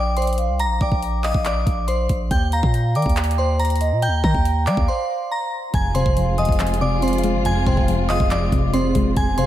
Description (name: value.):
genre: hip hop, trap.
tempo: 140 BPM.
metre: 4/4.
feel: half-time.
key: F dorian.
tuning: A4 = 441 Hz.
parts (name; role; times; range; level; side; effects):
glassy synth bell; melody; 0.0-9.5 s; C5 to Bb6; -24 LUFS; left 1 dB; chorus, ping-pong delay.
hollow clarinet-like synth lead; second line; 0.0-9.5 s; Eb5 to Ab5; -28 LUFS; right 4 dB; chorus, ping-pong delay.
long sustained 808-style bass; bass; 0.0-9.5 s; Eb1 to G3; -22 LUFS; equal; none.
trap drum kit; drums; 0.2-9.5 s; handclaps, hi-hat, kick drum; -23 LUFS; equal; none.
soft round pluck; accompaniment; 5.7-9.5 s; F2 to C4; -22 LUFS; left 1 dB; chorus.
dark symphonic string section; sustained chords; 5.7-9.5 s; C3 to Ab4; -26 LUFS; equal; none.
room: moderate lush hall reverb, RT60 1.7 s, digital ambience.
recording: dreamy mix soaked in reverb.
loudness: -17 LUFS.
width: side -12 dB against mid.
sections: 0.0-5.7 A section; 5.7-9.5 B section.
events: break 4.9-5.7.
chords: 0.0 Bb; 2.3 Ebadd9; 5.7 Fm.